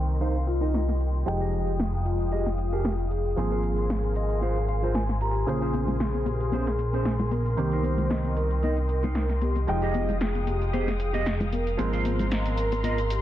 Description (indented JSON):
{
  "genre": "nu-disco, nu disco",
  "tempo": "114 BPM",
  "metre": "4/4",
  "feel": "swing 54% on 16ths",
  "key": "unclear",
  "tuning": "A4 = 440 Hz",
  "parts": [
    { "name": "warm concert grand piano", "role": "accompaniment", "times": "0.0-13.2 s", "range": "Db3 to G5", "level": "-33 LUFS", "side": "right 2 dB", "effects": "tape echo" },
    { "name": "clear studio string section", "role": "sustained chords", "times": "0.0-13.2 s", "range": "Ab3 to Eb6", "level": "-37 LUFS", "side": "left 3 dB", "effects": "none" },
    { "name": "mellow electric guitar", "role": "riff", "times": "0.0-13.1 s", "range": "Db4 to Bb5", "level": "-34 LUFS", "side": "right 3 dB", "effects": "lush chorus, vintage 12-bit sampler grit, low-pass filter, tape echo" },
    { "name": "chorused synth bass", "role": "bass", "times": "0.0-13.2 s", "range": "F1 to C2", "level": "-27 LUFS", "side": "equal", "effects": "none" },
    { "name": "house drum kit", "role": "drums", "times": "0.1-13.2 s", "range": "cabasa, hi-hat, snare drum", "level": "-32 LUFS", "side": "equal", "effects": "none" },
    { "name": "vibraphone with soft mallets", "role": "melody", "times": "0.5-13.2 s", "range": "F4 to Eb5", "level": "-32 LUFS", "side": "left 2 dB", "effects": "tape echo" },
    { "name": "congas", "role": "percussion", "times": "5.7-13.0 s", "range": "none", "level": "-33 LUFS", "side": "left 4 dB", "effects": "none" }
  ],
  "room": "studio ambience",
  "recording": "dense, heavily limited modern master, low-pass filter",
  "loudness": "-24 LUFS",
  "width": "side -12 dB against mid",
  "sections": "0.0-13.2 A section",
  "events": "clean electric guitar fill 0.0-1.3, 3.9-5.5; filter sweep on clean electric guitar 0.0-13.2; filter sweep 0.0-13.2",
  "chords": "0.0 Cm7; 1.3 Fm9; 3.4 Ab69; 5.5 Bbm9; 7.6 Cm7; 9.7 Fm9; 11.8 Ab69"
}